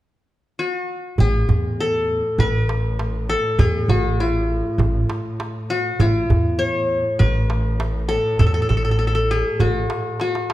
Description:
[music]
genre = Arabic maqam ensemble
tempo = 100 BPM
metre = 4/4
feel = straight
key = A maqam huzam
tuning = A4 = 442 Hz
[part]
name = qanun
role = melody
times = 0.6-10.5 s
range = E4+40c to C5+50c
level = -22 LUFS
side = left 2 dB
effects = none
[part]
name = upright bass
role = bass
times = 1.2-9.8 s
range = A1 to E2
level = -21 LUFS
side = equal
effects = none
[part]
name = rich double bass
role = drone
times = 1.2-10.5 s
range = A2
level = -29 LUFS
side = equal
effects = none
[part]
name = darbuka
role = percussion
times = 1.2-10.5 s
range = none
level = -22 LUFS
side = right 2 dB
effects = none
[sound]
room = light reverb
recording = dark, warm production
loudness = -18 LUFS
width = side -15 dB against mid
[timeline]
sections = 0.0-1.2 A section; 1.2-10.5 B section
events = drum fill 10.2-10.5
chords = none

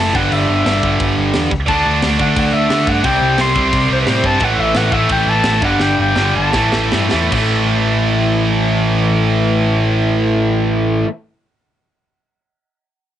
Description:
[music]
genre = punk rock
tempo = 149-176 BPM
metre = 4/4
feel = straight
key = unclear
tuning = A4 = 440 Hz
[part]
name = warm clarinet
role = melody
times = 0.0-6.9 s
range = B4 to C6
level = -18 LUFS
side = left 1 dB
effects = cassette tape
[part]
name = distorted electric guitar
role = riff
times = 0.0-11.1 s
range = G2 to D4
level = -20 LUFS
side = left 1 dB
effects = overdrive, cassette tape
[part]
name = tight distorted guitar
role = riff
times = 0.0-11.1 s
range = G2 to D4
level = -22 LUFS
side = left 7 dB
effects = distortion, cassette tape
[part]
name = tight distorted guitar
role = riff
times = 0.0-11.1 s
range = G2 to D4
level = -18 LUFS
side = right 7 dB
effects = distortion, cassette tape
[part]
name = overdriven picked electric bass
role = bass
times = 0.0-11.0 s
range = F#1 to A2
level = -19 LUFS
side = equal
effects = none
[part]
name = tight metal drum kit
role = drums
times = 0.1-7.4 s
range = crash cymbal, kick drum, snare drum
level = -22 LUFS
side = equal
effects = cassette tape
[sound]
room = little or no reverb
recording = home recording on cassette, nothing above 10.3 kHz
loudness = -12 LUFS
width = side -11 dB against mid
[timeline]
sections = 0.0-7.3 A section; 7.3-10.5 B section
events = slowing down 4.4-7.3; drum fill 5.8-7.3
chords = 0.2 G5; 1.7 D5; 3.0 C5; 4.4 A5; 5.6 G5; 6.5 A5

